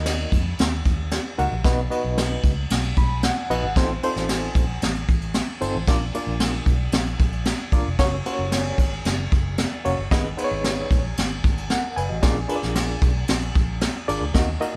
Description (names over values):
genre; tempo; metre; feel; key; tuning
uptempo 1960s-style soul; 113 BPM; 4/4; straight; unclear; A4 = 438 Hz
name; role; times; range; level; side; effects
barky reed electric piano; accompaniment; 0.0-14.8 s; Bb3 to B5; -28 LUFS; equal; overdrive, fast tremolo
vintage muted fingered electric bass; bass; 0.0-14.6 s; F1 to F2; -29 LUFS; equal; none
vintage brush drum kit; drums; 0.1-14.7 s; kick drum, ride cymbal, snare drum; -24 LUFS; equal; none
room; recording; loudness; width
light reverb; band playing live in one room; -23 LUFS; mono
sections
0.0-14.8 A section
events
reed electric piano fill 2.7-3.8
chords
0.0 Ebm; 1.6 B; 3.8 F7/A; 5.9 Bb; 8.0 Gb; 10.1 Abm; 12.2 Bb7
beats
0.05 0.58 1.11 | 1.64 2.17 2.70 3.23 | 3.76 4.29 4.82 5.35 | 5.88 6.41 6.94 7.46 | 7.99 8.52 9.05 9.58 | 10.11 10.64 11.17 11.70 | 12.23 12.76 13.29 13.81 | 14.34